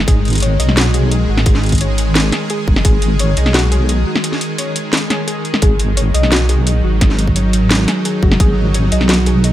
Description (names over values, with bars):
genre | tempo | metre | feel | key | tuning
half-time drum and bass | 173 BPM | 4/4 | half-time | G# minor | A4 = 440 Hz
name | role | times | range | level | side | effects
bowed-like drone | sustained chords | 0.0-9.5 s | D#3 to G#4 | -19 LUFS | right 1 dB | built-in reverb, sidechain pumping
deep soft wobble bass | bass | 0.0-9.5 s | F#1 to B1 | -14 LUFS | equal | chorus
warbly dusty pluck | arpeggios | 0.1-9.5 s | F#4 to D#5 | -23 LUFS | left 2 dB | chorus, analog delay
drum and bass drum kit | drums | 0.1-9.5 s | hi-hat, snare drum | -17 LUFS | equal | none
electronic kick drum | drums | 0.1-2.9, 5.6-8.5 s | none | -13 LUFS | equal | none
room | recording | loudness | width
moderate echo chamber reverb, RT60 1.5 s | echo-heavy mix | -12 LUFS | side -13 dB against mid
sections
0.0-9.5 A section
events
break 4.2-5.6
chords
0.0 G#5